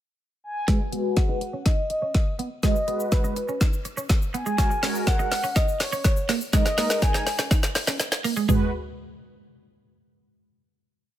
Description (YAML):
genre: dance-pop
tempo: 123 BPM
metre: 4/4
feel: straight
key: G# minor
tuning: A4 = 440 Hz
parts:
  - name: mellow horn-like synth lead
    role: melody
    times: 0.4-7.5 s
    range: B4 to G#5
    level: -29 LUFS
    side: equal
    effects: chorus, low-pass filter, digital delay
  - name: mellow synth brass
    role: accompaniment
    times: 0.7-8.7 s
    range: G#3 to B4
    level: -29 LUFS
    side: equal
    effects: chorus, phaser, sidechain pumping, low-pass filter
  - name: twelve-string electric guitar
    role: riff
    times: 0.7-8.6 s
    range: G#3 to F#4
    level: -30 LUFS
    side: right 6 dB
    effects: wide subtle chorus, low-pass filter
  - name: deep house drum kit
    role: drums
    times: 0.7-8.6 s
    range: hi-hat, kick drum, shaker, snare drum, toms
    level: -22 LUFS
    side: equal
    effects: none
  - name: egg shaker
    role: percussion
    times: 4.6-8.7 s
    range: none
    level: -43 LUFS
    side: left 10 dB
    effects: none
room: digital ambience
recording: none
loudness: -21 LUFS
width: side -12 dB against mid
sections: 0.0-0.7 pickup bar; 0.7-8.5 build; 8.5-10.4 final chord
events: build-up 0.7-8.5; drum fill 0.7-8.5; filter sweep 0.7-8.5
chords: 0.0 N.C.; 0.7 G#m7; 4.6 F#add9; 6.5 D#sus4; 8.5 G#m7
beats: 0.20 | 0.68 1.17 1.66 2.15 | 2.63 3.12 3.61 4.10 | 4.58 5.07 5.56 6.05 | 6.54 7.02 7.51 8.00 | 8.49